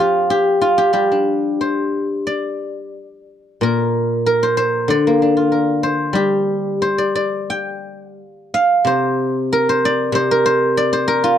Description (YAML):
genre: chinese traditional, Chinese solo plucked strings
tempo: 86-97 BPM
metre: 2/4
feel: rubato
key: G yu mode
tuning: A4 = 444 Hz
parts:
  - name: guzheng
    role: solo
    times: 0.0-11.4 s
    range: Bb2 to G5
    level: -15 LUFS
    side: equal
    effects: none
room: light reverb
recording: dry, close 1970s-style studio recording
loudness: -15 LUFS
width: side -9 dB against mid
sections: 0.0-2.3 A section; 2.3-11.4 B section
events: none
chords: none